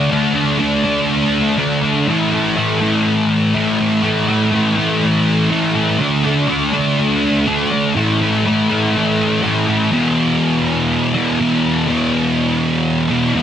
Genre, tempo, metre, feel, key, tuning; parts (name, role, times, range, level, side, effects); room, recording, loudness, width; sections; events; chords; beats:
rock; 122 BPM; 4/4; straight; A4 = 440 Hz
thick fuzz guitar; solo; 0.0-13.4 s; E2 to D4; -14 LUFS; equal; distortion, analog chorus
light reverb; dense, heavily limited modern master; -14 LUFS; side -9 dB against mid
0.0-9.9 A section; 9.9-13.4 B section
0.0 D5; 2.1 A5; 6.0 D5; 8.0 A5; 9.9 E5
| 0.11 0.60 1.09 1.58 | 2.07 2.56 3.05 3.54 | 4.04 4.53 5.02 5.51 | 6.00 6.49 6.98 7.47 | 7.96 8.45 8.94 9.43 | 9.92 10.41 10.90 11.39 | 11.88 12.38 12.87 13.36